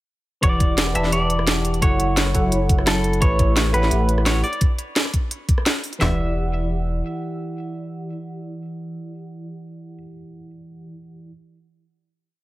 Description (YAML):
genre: liquid drum and bass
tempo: 172 BPM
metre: 4/4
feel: straight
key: E dorian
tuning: A4 = 440 Hz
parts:
  - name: semi-hollow electric guitar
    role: melody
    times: 0.4-10.0 s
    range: A4 to E5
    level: -26 LUFS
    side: equal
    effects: spring reverb, digital delay
  - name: tine electric piano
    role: accompaniment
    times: 0.4-11.3 s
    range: E3 to A5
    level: -25 LUFS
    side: equal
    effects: phaser, digital delay
  - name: warm sub bass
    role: bass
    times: 0.4-7.0 s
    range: E1 to A1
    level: -22 LUFS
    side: equal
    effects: none
  - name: drum and bass drum kit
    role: drums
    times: 0.4-6.1 s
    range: handclaps, kick drum, snare drum, toms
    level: -19 LUFS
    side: equal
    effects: none
  - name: drum and bass drum kit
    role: drums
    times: 0.4-6.0 s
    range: hi-hat, rim click, snare drum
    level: -22 LUFS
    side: equal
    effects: none
room: little or no reverb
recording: none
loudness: -18 LUFS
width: side -17 dB against mid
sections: 0.4-6.0 drop; 6.0-8.8 final chord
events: drop 0.4-6.0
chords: 0.4 Em9; 1.8 F#m7; 3.2 A7; 4.4 N.C.; 6.0 Em9